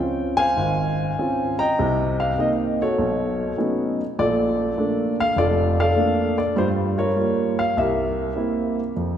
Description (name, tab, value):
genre	solo jazz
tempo	100 BPM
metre	4/4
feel	swing 68% on 8ths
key	unclear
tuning	A4 = 437 Hz
part	warm concert grand piano	solo	0.0-9.2 s	F1 to Bb5	-19 LUFS	equal	none
room	wet church reverb, RT60 3.3 s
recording	recorded in a church or concert hall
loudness	-19 LUFS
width	side -9 dB against mid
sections	0.0-9.0 A section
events	none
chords	0.0 Dbmaj7; 1.8 Cm7; 3.0 B9; 4.2 Bbmaj7; 6.6 Gm7b5; 7.8 C7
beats	0.58 1.18 | 1.78 2.38 2.98 3.57 | 4.17 4.77 5.37 5.97 | 6.56 7.16 7.76 8.36 | 8.95